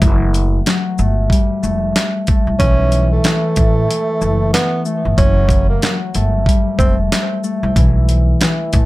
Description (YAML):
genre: hip hop, boom-bap hip-hop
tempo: 93 BPM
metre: 4/4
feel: swing 59% on 16ths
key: unclear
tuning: A4 = 440 Hz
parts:
  - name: concert harp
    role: accompaniment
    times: 0.0-8.9 s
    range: E3 to A3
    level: -19 LUFS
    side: left 2 dB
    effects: cassette tape, high-pass filter, low-pass filter
  - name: upright bass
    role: bass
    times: 0.0-8.9 s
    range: F1 to C2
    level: -16 LUFS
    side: equal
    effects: none
  - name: dusty soul sampler-style drum kit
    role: drums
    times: 0.0-8.9 s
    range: handclaps, hi-hat, kick drum, shaker, snare drum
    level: -15 LUFS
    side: equal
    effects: none
  - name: breathy tenor saxophone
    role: melody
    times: 2.6-7.0 s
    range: A3 to C#4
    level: -20 LUFS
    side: right 2 dB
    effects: high-pass filter, low-pass filter, digital delay
room: little or no reverb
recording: none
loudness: -13 LUFS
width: side -18 dB against mid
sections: 0.0-2.6 A section; 2.6-8.9 B section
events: none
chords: 0.0 N.C.; 1.0 G7sus2; 2.6 B7sus4; 5.2 F#5; 6.1 G7sus2; 7.8 B7sus4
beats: | 0.01 0.66 1.30 1.95 | 2.60 3.24 3.89 4.53 | 5.18 5.82 6.47 7.11 | 7.76 8.40